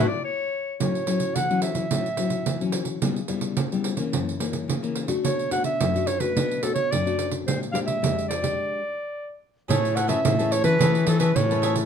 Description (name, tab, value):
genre	samba and choro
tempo	108 BPM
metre	4/4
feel	straight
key	A major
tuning	A4 = 439 Hz
part	bright clarinet	second line	0.0-0.8 s	C#5 to D5	-28 LUFS	left 6 dB	none
part	cavaquinho	accompaniment	0.0-0.1, 9.7-11.9 s	G#4 to A5	-32 LUFS	right 2 dB	none
part	nylon-string guitar	accompaniment	0.0-11.9 s	F2 to B4	-27 LUFS	left 5 dB	none
part	nylon-string guitar	bass	0.0-0.1, 9.7-11.8 s	A2 to E3	-23 LUFS	left 3 dB	none
part	clear clarinet	melody	0.8-11.8 s	A4 to F#5	-26 LUFS	right 2 dB	none
part	pandeiro	percussion	0.8-11.9 s	none	-27 LUFS	right 6 dB	none
room	moderate studio reverb, RT60 0.7 s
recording	none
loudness	-22 LUFS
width	side -7 dB against mid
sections	0.8-9.7 A section; 9.7-11.9 B section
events	band accent 0.0-0.8; stop 8.6-9.7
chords	0.0 N.C.; 0.8 A6; 3.0 C#m7b5; 4.1 F#7; 5.2 Bm7; 7.5 Bb6; 9.7 Amaj9